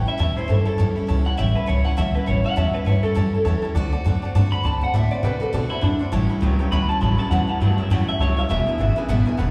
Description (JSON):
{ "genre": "rock", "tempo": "202 BPM", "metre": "4/4", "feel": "swing 59% on 8ths", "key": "A mixolydian", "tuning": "A4 = 438 Hz", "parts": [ { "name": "electric guitar through a small old amp", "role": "melody", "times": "0.0-9.1 s", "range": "D4 to B5", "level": "-28 LUFS", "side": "equal", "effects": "analog chorus, slapback echo, tape echo" }, { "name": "picked steel-string acoustic guitar", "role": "accompaniment", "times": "0.0-9.5 s", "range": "E2 to F#4", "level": "-29 LUFS", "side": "equal", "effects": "slapback echo" }, { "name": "upright bass", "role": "bass", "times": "0.0-9.5 s", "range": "E1 to C3", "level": "-23 LUFS", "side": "equal", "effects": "none" }, { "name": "bright upright piano", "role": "accompaniment", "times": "0.1-9.5 s", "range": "B4 to C6", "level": "-36 LUFS", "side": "equal", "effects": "slapback echo" }, { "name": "electric guitar through a small old amp", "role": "riff", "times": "6.1-9.5 s", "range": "E2 to F#3", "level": "-30 LUFS", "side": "equal", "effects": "slapback echo" } ], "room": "light reverb, small room ambience", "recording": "live gig heard through the venue's PA, recital hall reverb", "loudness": "-21 LUFS", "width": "mono", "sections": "0.0-9.5 A section", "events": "clean electric guitar solo 0.0-9.5; upright piano fill 3.3-3.8", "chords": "0.0 A7; 3.8 D7; 6.1 A7; 8.5 E7", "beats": "| 0.20 0.49 0.79 1.09 | 1.39 1.68 1.98 2.27 | 2.57 2.87 3.16 3.46 | 3.76 4.05 4.35 4.64 | 4.94 5.24 5.54 5.83 | 6.13 6.42 6.72 7.02 | 7.31 7.61 7.91 8.20 | 8.50 8.79 9.09 9.38" }